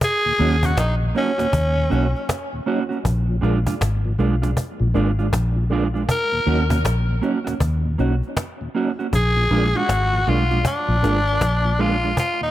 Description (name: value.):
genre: dub reggae.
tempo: 79 BPM.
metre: 4/4.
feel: swing 62% on 16ths.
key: Eb minor.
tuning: A4 = 440 Hz.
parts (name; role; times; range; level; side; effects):
growling tenor saxophone; melody; 0.0-12.5 s; Db4 to Bb4; -22 LUFS; left 1 dB; tape echo.
cajon; drums; 0.0-12.4 s; none; -24 LUFS; equal; none.
mellow tonewheel organ; accompaniment; 0.3-12.5 s; Eb2 to Eb4; -30 LUFS; left 1 dB; chorus vibrato, slow rotary speaker, tape echo.
mellow electric guitar; accompaniment; 0.4-12.1 s; Ab3 to Gb4; -25 LUFS; right 5 dB; tape echo.
vintage muted fingered electric bass; bass; 0.4-12.1 s; Ab1 to Eb2; -20 LUFS; left 1 dB; none.
room: light reverb, small room ambience.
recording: none.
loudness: -18 LUFS.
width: side -14 dB against mid.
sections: 0.0-12.5 A section.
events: none.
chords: 0.0 Ebm7; 3.0 Bb7; 6.1 Ebm7; 9.1 Bb7.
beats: | 0.01 0.77 1.53 2.29 | 3.05 3.81 4.57 5.33 | 6.09 6.85 7.61 8.37 | 9.13 9.89 10.65 11.41 | 12.17.